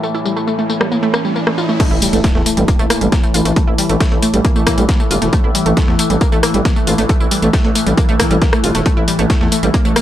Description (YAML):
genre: driving peak-time techno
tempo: 136 BPM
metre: 4/4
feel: straight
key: unclear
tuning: A4 = 441 Hz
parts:
  - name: analog pluck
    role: riff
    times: 0.0-10.0 s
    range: G3 to F4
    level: -19 LUFS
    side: equal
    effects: chorus, sidechain pumping, analog delay
  - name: overtone-sweeping drone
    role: drone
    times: 0.0-10.0 s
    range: A2 to E3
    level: -21 LUFS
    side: left 2 dB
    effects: chorus, built-in reverb, sidechain pumping
  - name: techno drum kit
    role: drums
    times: 0.0-10.0 s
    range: crash cymbal, hi-hat, rim click, tambourine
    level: -20 LUFS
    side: left 1 dB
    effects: overdrive, sidechain pumping on perc, low-pass filter on perc, studio reverb, low-pass filter on snare, sidechain pumping on hats, low-pass filter on hats, sidechain pumping on cymbals, low-pass filter on cymbals
  - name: riser and impact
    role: sound effects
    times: 0.0-3.6 s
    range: none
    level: -26 LUFS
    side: right 1 dB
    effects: none
  - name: warbly tape-like pad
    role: texture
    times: 0.0-10.0 s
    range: A3 to A5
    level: -25 LUFS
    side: right 3 dB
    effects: chorus, built-in reverb, sidechain pumping
  - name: dusty soul sampler-style drum kit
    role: drums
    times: 1.8-10.0 s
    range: hi-hat, snare drum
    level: -28 LUFS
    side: left 1 dB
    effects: sidechain pumping on hats, high-pass filter on hats, studio reverb, high-pass filter on snare
  - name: electronic kick drum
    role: drums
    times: 1.8-9.8 s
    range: none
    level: -14 LUFS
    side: equal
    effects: overdrive, studio reverb
  - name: growling FM bass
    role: bass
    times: 1.9-9.9 s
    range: E1 to E2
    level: -17 LUFS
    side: equal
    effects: sidechain pumping
room: little or no reverb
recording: dry, gritty hardware recording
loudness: -12 LUFS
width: side -12 dB against mid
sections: 0.0-1.8 A section; 1.8-10.0 B section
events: riser 0.0-1.8; drop 1.8-10.0; impact 1.8-3.6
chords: 0.0 A5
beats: | 0.03 0.47 0.92 1.36 | 1.80 2.24 2.68 3.12 | 3.56 4.00 4.45 4.89 | 5.33 5.77 6.21 6.65 | 7.09 7.53 7.97 8.42 | 8.86 9.30 9.74